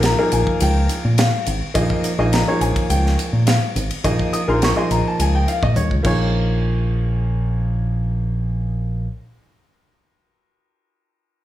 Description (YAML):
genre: electric jazz fusion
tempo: 105 BPM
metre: 4/4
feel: straight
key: Bb dorian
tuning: A4 = 436 Hz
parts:
  - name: bright baby grand piano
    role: accompaniment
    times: 0.0-9.1 s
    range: F3 to Eb6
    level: -21 LUFS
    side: left 1 dB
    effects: none
  - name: fingered electric bass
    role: bass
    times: 0.0-9.1 s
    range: Ab1 to Bb2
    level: -19 LUFS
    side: equal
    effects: none
  - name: tight funk drum kit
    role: drums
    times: 0.0-6.2 s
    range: crash cymbal, hi-hat, kick drum, ride cymbal, snare drum, toms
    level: -23 LUFS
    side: equal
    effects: none
room: studio ambience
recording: studio reverb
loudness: -16 LUFS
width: side -13 dB against mid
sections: 0.0-6.3 A section; 6.3-8.6 B section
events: drum fill 5.8-6.3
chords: 0.0 Bbm7